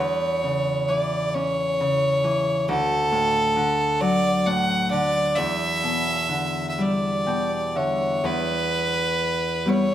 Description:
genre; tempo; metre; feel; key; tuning
celtic folk, Celtic slow air; 40-46 BPM (dotted quarters); 6/8; rubato; E dorian; A4 = 441 Hz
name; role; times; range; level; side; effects
clear fiddle; melody; 0.0-9.9 s; A4 to F#5; -22 LUFS; right 1 dB; none
Celtic harp; accompaniment; 0.0-9.9 s; D2 to G5; -24 LUFS; left 1 dB; none
room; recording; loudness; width
moderate recital hall reverb, RT60 1.6 s; none; -20 LUFS; side -11 dB against mid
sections
0.0-8.2 A section; 8.2-9.9 B section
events
harp fill 6.8-8.2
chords
0.0 C#m/E; 2.7 D; 5.4 Em7; 8.2 Em

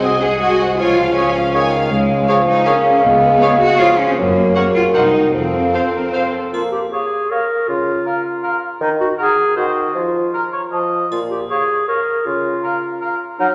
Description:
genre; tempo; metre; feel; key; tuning
cinematic, playful, whimsical film cue; 158 BPM; 3/4; straight; Bb minor; A4 = 439 Hz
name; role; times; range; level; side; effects
clear studio violin section; melody; 0.0-6.2 s; F5 to Ab5; -28 LUFS; equal; none
clear chamber violin section; second line; 0.0-6.2 s; C5 to F5; -29 LUFS; equal; none
mellow clarinet; second line; 0.0-13.5 s; Eb4 to Bb4; -23 LUFS; equal; none
mellow large flute ensemble; second line; 0.0-13.5 s; F5 to Bb5; -28 LUFS; equal; none
warm oboe; second line; 0.0-13.5 s; Bb4 to Eb5; -26 LUFS; equal; none
mellow bassoon; accompaniment; 0.0-13.5 s; Bb2 to Bb3; -23 LUFS; equal; none
rich studio viola section; accompaniment; 0.0-6.5 s; F4 to C5; -31 LUFS; equal; none
mellow French horn section; sustained chords; 0.0-6.3 s; Gb4 to F5; -20 LUFS; equal; none
rich studio cello section; bass; 0.0-6.3 s; Ab3 to Ab4; -21 LUFS; equal; none
rich studio double bass section; bass; 0.0-5.7 s; C2 to Gb2; -26 LUFS; equal; none
triangle; percussion; 6.5-7.3, 11.1-11.8 s; none; -45 LUFS; equal; none
room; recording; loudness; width
wet scoring stage reverb, RT60 2.1 s; none; -16 LUFS; mono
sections
0.0-6.5 A section; 6.5-13.5 B section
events
none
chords
0.0 Ab7/C; 0.8 Db; 3.0 Db7; 4.2 Gb; 4.9 Cm7b5; 5.3 F; 6.5 Bbm; 7.7 Bbm/Db; 8.8 N.C.; 9.9 Bb5/F; 11.1 Bbm; 12.3 Bbm/Db

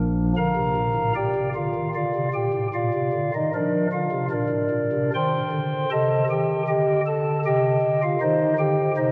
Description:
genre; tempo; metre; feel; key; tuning
classical, chorale-style piece for pipe organ; 76 BPM; 3/4; rubato; Bb major; A4 = 441 Hz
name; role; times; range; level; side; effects
pipe organ, stopped flute; solo; 0.0-9.1 s; Bb1 to C6; -23 LUFS; equal; none
room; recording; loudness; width
wet church reverb, RT60 3.2 s; worn, warbling old tape, cassette tape, warbly pitch drift; -23 LUFS; mono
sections
0.4-9.1 A section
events
none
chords
0.4 Bb; 5.1 Cm

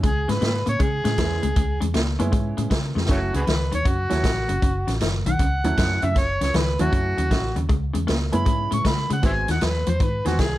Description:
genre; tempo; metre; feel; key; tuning
electric blues shuffle; 156 BPM; 4/4; swing 65% on 8ths; C# minor; A4 = 442 Hz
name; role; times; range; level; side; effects
electric guitar through a small old amp; riff; 0.0-10.6 s; F#2 to A#3; -27 LUFS; left 3 dB; none
vintage muted fingered electric bass; bass; 0.0-10.6 s; F#1 to C#3; -25 LUFS; equal; none
vintage drum kit; drums; 0.0-10.5 s; hi-hat, kick drum, snare drum; -24 LUFS; equal; none
overdriven harmonica; melody; 0.1-10.6 s; A3 to C#6; -26 LUFS; equal; none
clear upright piano; accompaniment; 1.2-10.4 s; F#3 to G#4; -29 LUFS; right 4 dB; plate reverb
room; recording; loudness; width
light reverb; none; -20 LUFS; side -15 dB against mid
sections
0.0-10.6 A section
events
drum fill 2.9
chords
0.0 C#m7; 3.1 F#m7; 7.7 C#m7; 9.2 G#7#9

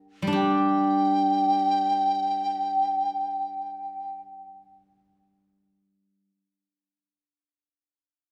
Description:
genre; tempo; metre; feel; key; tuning
chinese traditional, Chinese chamber ensemble; free time; none; none; G yu mode; A4 = 440 Hz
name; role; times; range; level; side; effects
steel-string zither; accompaniment; 0.0-6.3 s; G3 to Bb4; -29 LUFS; equal; none
mellow hollow large dizi; melody; 0.4-4.2 s; G5; -27 LUFS; equal; none
room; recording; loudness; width
wet recital hall reverb, RT60 1.5 s; heard from further back in the room; -25 LUFS; mono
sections
0.3-5.3 A section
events
none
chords
none

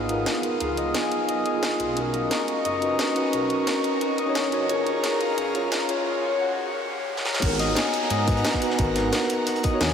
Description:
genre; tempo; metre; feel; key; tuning
liquid drum and bass; 176 BPM; 4/4; swing 54% on 16ths; G# dorian; A4 = 440 Hz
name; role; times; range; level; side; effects
mellow tine electric piano; accompaniment; 0.0-9.9 s; B3 to C#5; -26 LUFS; equal; slow stereo tremolo, diffuse ambient delay
airy breathy pad; sustained chords; 0.0-9.9 s; B3 to D#6; -31 LUFS; equal; chorus, sidechain pumping
concert harp; arpeggios; 0.0-9.9 s; E#4 to A#5; -29 LUFS; left 4 dB; low-pass filter, diffuse ambient delay
swelling detuned saw bass; bass; 0.0-9.9 s; F#1 to G#2; -31 LUFS; equal; tube saturation
riser and downlifter; sound effects; 0.1-9.9 s; none; -36 LUFS; right 1 dB; none
garage drum kit; drums; 0.1-9.9 s; crash cymbal, hi-hat, snare drum; -29 LUFS; equal; high-pass filter on hats, high-pass filter on snare, high-pass filter on cymbals
crunchy breakbeat drum kit; drums; 7.4-9.9 s; hi-hat, snare drum; -35 LUFS; equal; none
electronic kick drum; drums; 7.4-9.9 s; none; -25 LUFS; equal; none
room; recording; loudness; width
wet huge ambient reverb, RT60 7.4 s; dreamy mix soaked in reverb, high-pass filter; -22 LUFS; side -7 dB against mid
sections
0.0-7.4 A section; 7.4-9.9 B section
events
build-up 0.0-7.4; filter sweep on analog synth pad 0.0-7.4; filter sweep on harp 0.0-7.4; riser 0.1-7.4; drum fill 7.2; drop 7.4-9.9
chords
0.0 C#9; 2.0 Bmaj9; 4.7 F#maj9; 7.4 G#m9

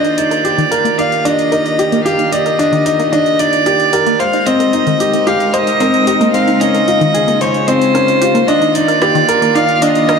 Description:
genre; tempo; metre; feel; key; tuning
piano and strings electronica; 112 BPM; 4/4; straight; Eb major; A4 = 441 Hz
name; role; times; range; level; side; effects
rich violin; melody; 0.0-10.2 s; C5 to F5; -14 LUFS; equal; none
warm string quartet; sustained chords; 0.0-10.2 s; Db3 to D5; -19 LUFS; right 3 dB; none
wide unison pluck; arpeggios; 0.0-10.1 s; Eb3 to Eb5; -20 LUFS; equal; tape echo
bright upright piano; riff; 0.0-10.2 s; C4 to D5; -15 LUFS; left 1 dB; tape echo
deep house drum kit; drums; 0.0-10.2 s; hi-hat, rim click; -26 LUFS; left 1 dB; overdrive, high-pass filter on hats, high-pass filter on snare, high-pass filter on room
room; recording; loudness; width
wet scoring stage reverb, RT60 2.0 s, small room ambience; dark, warm production, high-pass filter; -10 LUFS; side -5 dB against mid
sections
0.0-10.2 A section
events
build-up 0.0-10.2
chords
0.0 Ebmaj7; 4.2 Abmaj7; 6.3 Dbmaj7; 8.5 Ebmaj7

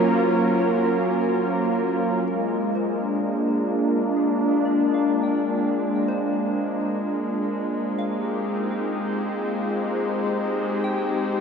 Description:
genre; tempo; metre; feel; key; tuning
ambient; 63 BPM; 3/4; straight; unclear; A4 = 436 Hz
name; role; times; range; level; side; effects
warm analog pad; sustained chords; 0.0-11.4 s; Gb3 to C5; -21 LUFS; equal; lush chorus
soft synth bell; arpeggios; 0.0-11.4 s; Ab4 to G5; -35 LUFS; left 2 dB; chorus, phaser, tape echo
room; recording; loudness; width
wet huge ambient reverb, RT60 7.9 s; dreamy mix soaked in reverb; -21 LUFS; side -6 dB against mid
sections
0.0-2.3 A section; 2.3-11.4 B section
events
fade-in on synth bell 2.3-11.4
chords
0.0 Gbmaj7; 2.3 Bb7/Ab; 8.0 Abmaj7

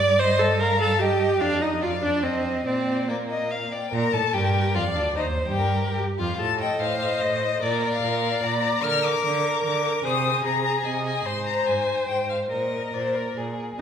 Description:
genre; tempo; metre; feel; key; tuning
quick classical-period movement for string quartet; 147 BPM; 3/4; straight; Bb major; A4 = 440 Hz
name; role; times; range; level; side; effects
clear violin; melody; 0.0-13.8 s; Bb4 to F6; -28 LUFS; left 8 dB; none
warm violin; second line; 0.0-13.8 s; D4 to F5; -28 LUFS; left 3 dB; none
clear viola; accompaniment; 0.0-13.8 s; Bb3 to Eb5; -26 LUFS; right 2 dB; none
rich cello; bass; 0.0-13.8 s; D2 to D3; -28 LUFS; right 2 dB; none
room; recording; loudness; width
wet recital hall reverb, RT60 1.5 s; minimal, uncompressed stereo recording; -21 LUFS; side -8 dB against mid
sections
0.0-3.9 A section; 3.9-13.8 B section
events
none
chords
0.2 Gm11; 1.4 Ebsus2/F; 1.8 Dm/F; 2.2 F5; 2.7 Bb; 5.2 Eb; 6.4 F7/A; 7.6 Bb; 8.8 Bb/D; 10.0 Ab/C; 11.3 Ab; 12.5 Bb

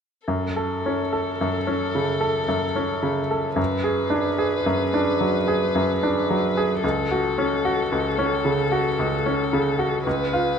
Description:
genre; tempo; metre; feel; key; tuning
classical, slow romantic movement for piano quartet; 55 BPM; 3/4; rubato; F# minor; A4 = 442 Hz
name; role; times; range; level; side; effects
rich violin; melody; 0.3-10.6 s; A4 to B4; -26 LUFS; left 3 dB; none
bright grand piano; accompaniment; 0.3-10.6 s; C#2 to A4; -21 LUFS; right 1 dB; none
room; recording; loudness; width
moderate recital hall reverb, RT60 1.6 s; close, detailed microphones; -20 LUFS; side -7 dB against mid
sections
0.3-10.6 A section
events
none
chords
0.3 F#m; 3.6 G#m7b5/F#; 6.8 F#m/C#; 10.1 C#7

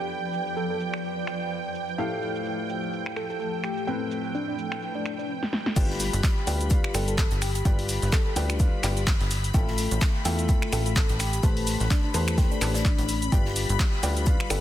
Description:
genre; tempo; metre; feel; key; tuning
piano house; 127 BPM; 4/4; swing 57% on 16ths; G mixolydian; A4 = 441 Hz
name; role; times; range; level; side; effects
soft struck synth lead; melody; 0.0-14.6 s; D4 to A4; -35 LUFS; left 1 dB; chorus, dub echo
analog string pad; sustained chords; 0.0-14.6 s; G5 to B5; -35 LUFS; equal; ensemble chorus, sidechain pumping
clear upright piano; riff; 0.0-14.6 s; A2 to A5; -32 LUFS; left 2 dB; sidechain pumping
granular cloud pad; texture; 0.0-5.3 s; F3 to E6; -33 LUFS; equal; built-in reverb, sidechain pumping
punchy analog drum machine; drums; 0.1-14.6 s; crash cymbal, finger snaps, handclaps, hi-hat, shaker, snare drum; -31 LUFS; equal; overdrive, low-pass filter on perc, low-pass filter on snare, low-pass filter on hats, low-pass filter on cymbals
plucky analog bass; bass; 5.8-14.6 s; G1 to E2; -27 LUFS; equal; sidechain pumping
crisp fusion drum kit; drums; 5.8-14.6 s; hi-hat, shaker, snare drum; -40 LUFS; equal; none
electronic kick drum; drums; 5.8-14.4 s; none; -23 LUFS; equal; overdrive
room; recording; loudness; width
light reverb, small room ambience; dense, heavily limited modern master; -23 LUFS; side -12 dB against mid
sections
0.0-5.8 A section; 5.8-14.6 B section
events
drum fill 5.4-5.8; drop 5.8-14.6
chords
0.0 G7; 2.0 Fmaj9; 3.9 Am9; 5.8 G7; 9.5 Fmaj9/A; 11.4 Am9; 13.3 G7

